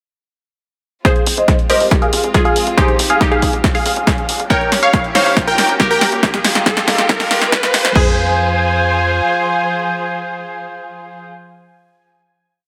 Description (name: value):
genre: uplifting trance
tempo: 139 BPM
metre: 4/4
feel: straight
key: F minor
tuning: A4 = 441 Hz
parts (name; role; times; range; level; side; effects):
- supersaw stab; melody; 1.0-11.3 s; Ab4 to Ab5; -20 LUFS; equal; sidechain pumping, low-pass filter, delay
- glassy wavetable pluck; second line; 1.0-11.3 s; Eb4 to Db5; -24 LUFS; equal; chorus, delay
- warm chamber string section; sustained chords; 1.0-11.3 s; Eb3 to C5; -23 LUFS; equal; sidechain pumping
- electronic kick drum; drums; 1.0-8.0 s; none; -18 LUFS; equal; none
- punchy analog drum machine; drums; 1.0-8.0 s; crash cymbal, hi-hat, snare drum; -20 LUFS; equal; none
- riser; sound effects; 3.4-8.0 s; none; -26 LUFS; equal; none
- tight sequencer bass; bass; 1.3-9.2 s; F1 to G2; -25 LUFS; equal; sidechain pumping, high-pass filter
room: moderate lush hall reverb, RT60 1.9 s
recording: high-pass filter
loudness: -14 LUFS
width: mono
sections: 1.1-8.0 build; 8.0-11.4 final chord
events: build-up 1.1-8.0; drum fill 1.1-8.0; filter sweep on supersaw synth 1.1-6.2; filter sweep 1.1-8.0; riser 3.4-8.0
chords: 1.1 Fm; 4.5 Gdim; 6.2 Ebadd9; 8.0 Fm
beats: | 1.05 1.48 1.91 2.35 | 2.78 3.21 3.64 4.07 | 4.50 4.93 5.37 5.80 | 6.23 6.66 7.09 7.53 | 7.96 8.39 8.82 9.25 | 9.68 10.11 10.55 10.98